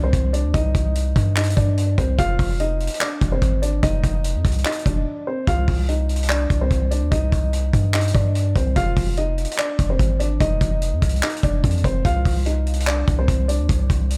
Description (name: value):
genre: hip hop, trap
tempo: 146 BPM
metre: 4/4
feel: half-time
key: C minor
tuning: A4 = 440 Hz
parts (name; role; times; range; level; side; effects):
- dark baby grand piano; melody; 0.0-13.7 s; C4 to F5; -28 LUFS; equal; analog delay
- long sustained 808-style bass; bass; 0.0-14.2 s; F1 to G2; -23 LUFS; equal; none
- vintage drum kit; drums; 0.1-14.2 s; handclaps, hi-hat, kick drum; -25 LUFS; equal; none
room: studio reverb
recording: echo-heavy mix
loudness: -20 LUFS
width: mono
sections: 0.0-14.2 A section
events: break 5.1-5.5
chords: 0.0 Cm; 2.2 F7(no3); 5.5 Cm; 8.8 Fm7; 12.0 Cm